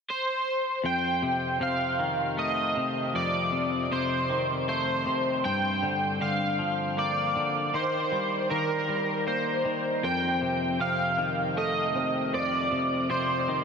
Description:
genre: rock.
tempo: 78 BPM.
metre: 3/4.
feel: straight.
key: unclear.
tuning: A4 = 441 Hz.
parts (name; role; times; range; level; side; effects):
crunchy overdriven guitar; melody; 0.1-13.6 s; Bb4 to G5; -26 LUFS; right 1 dB; analog chorus, analog delay.
twangy electric guitar; arpeggios; 0.8-13.6 s; F2 to Bb3; -30 LUFS; left 2 dB; lush chorus, analog delay.
felt-muted upright piano; arpeggios; 10.0-13.1 s; A4 to C5; -39 LUFS; right 4 dB; none.
room: wet huge ambient reverb, RT60 7.6 s.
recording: dreamy mix soaked in reverb.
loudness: -25 LUFS.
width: side -6 dB against mid.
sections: 0.8-13.6 A section.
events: none.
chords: 0.0 N.C.; 0.8 F7; 5.4 Gm7; 7.7 Eb; 10.0 F7.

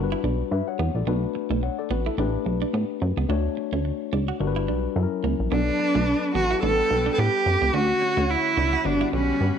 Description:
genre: funk.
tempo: 108 BPM.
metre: 4/4.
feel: swing 56% on 16ths.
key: B minor.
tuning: A4 = 440 Hz.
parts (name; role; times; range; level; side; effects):
tine electric piano; accompaniment; 0.0-9.6 s; D3 to F#5; -29 LUFS; left 14 dB; none.
plucky analog bass; bass; 0.0-9.5 s; G1 to A2; -25 LUFS; right 1 dB; none.
clean electric guitar; riff; 0.1-9.2 s; A3 to F#4; -32 LUFS; right 12 dB; wide subtle chorus.
warm cello; melody; 5.5-9.6 s; C#4 to A4; -22 LUFS; right 2 dB; none.
brassy analog pad; sustained chords; 5.5-9.6 s; G3 to B5; -34 LUFS; left 14 dB; chorus.
room: light reverb, digital ambience.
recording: 1960s-style stereo with parts hard left and right.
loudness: -21 LUFS.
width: side -8 dB against mid.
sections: 0.0-5.5 A section; 5.5-9.6 B section.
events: none.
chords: 0.0 Gmaj7; 1.1 Bm7; 2.2 A9sus4; 3.3 Dmaj7; 4.4 Gmaj7; 5.0 F#7; 5.5 Bm7; 6.6 A9sus4; 7.7 Dmaj7; 8.9 Gmaj7.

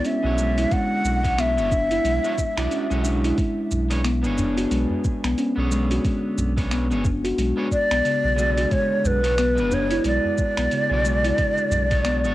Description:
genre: organic downtempo.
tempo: 90 BPM.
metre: 4/4.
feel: swing 59% on 16ths.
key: unclear.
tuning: A4 = 438 Hz.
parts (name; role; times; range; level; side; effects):
breathy ney; melody; 0.0-3.1, 7.7-12.3 s; B4 to F#5; -23 LUFS; equal; tape echo.
electric guitar at the edge of break-up; accompaniment; 0.0-12.3 s; D3 to D5; -30 LUFS; right 1 dB; sidechain pumping, cassette tape, tape echo.
steel tongue drum; arpeggios; 0.0-12.3 s; C#3 to F#4; -25 LUFS; left 1 dB; cassette tape, tape echo.
dusty soul sampler-style drum kit; drums; 0.0-12.3 s; finger snaps, hi-hat, shaker; -33 LUFS; right 1 dB; overdrive, cassette tape.
warm sub bass; bass; 0.2-12.3 s; F#1 to B1; -25 LUFS; equal; sidechain pumping.
electronic kick drum; drums; 0.7-12.0 s; none; -24 LUFS; equal; cassette tape.
udu; percussion; 3.7-11.9 s; none; -30 LUFS; right 1 dB; none.
room: moderate studio reverb, RT60 0.6 s.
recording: home recording on cassette.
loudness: -19 LUFS.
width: side -16 dB against mid.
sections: 0.0-12.3 A section.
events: none.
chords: 0.0 E13; 3.4 Bm69; 8.7 E13 (rootless).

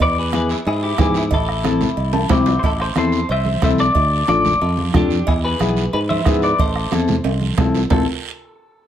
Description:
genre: latin, cumbia.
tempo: 182 BPM.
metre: 4/4.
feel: straight.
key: A harmonic minor.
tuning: A4 = 440 Hz.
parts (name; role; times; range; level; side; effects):
clean electric guitar; melody; 0.0-8.1 s; D4 to E5; -21 LUFS; left 2 dB; spring reverb, slapback echo.
fingered electric bass; bass; 0.0-8.1 s; A1 to G#2; -21 LUFS; equal; none.
bombo; percussion; 0.0-8.0 s; none; -20 LUFS; right 2 dB; none.
cowbell and timbales; percussion; 0.0-8.0 s; none; -27 LUFS; right 6 dB; none.
guiro; percussion; 0.0-8.0 s; none; -32 LUFS; right 8 dB; none.
mellow electric guitar; accompaniment; 0.3-8.1 s; B3 to A5; -20 LUFS; left 4 dB; none.
congas; percussion; 0.3-8.0 s; none; -25 LUFS; right 3 dB; none.
room: moderate studio ambience, RT60 0.5 s.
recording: none.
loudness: -15 LUFS.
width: side -10 dB against mid.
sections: 0.0-2.6 A section; 2.6-7.9 B section.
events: clean electric guitar fill 2.0-2.6; drum fill 2.1-2.6, 7.2-7.9.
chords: 0.0 E; 1.3 Am; 4.0 Dm; 5.3 E; 6.6 Am.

